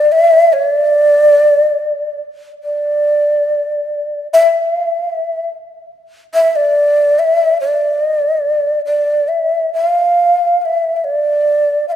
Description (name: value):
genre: japanese traditional, Japanese chamber music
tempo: 66-76 BPM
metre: 2/4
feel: rubato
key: D hirajoshi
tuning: A4 = 440 Hz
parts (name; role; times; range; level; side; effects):
- breathy mellow shakuhachi; solo; 0.0-12.0 s; D5 to F5; -11 LUFS; equal; none
room: moderate concert hall reverb, RT60 2.3 s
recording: minimal, uncompressed stereo recording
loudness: -11 LUFS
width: side -10 dB against mid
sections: 0.0-9.3 A section; 9.3-12.0 B section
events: none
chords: none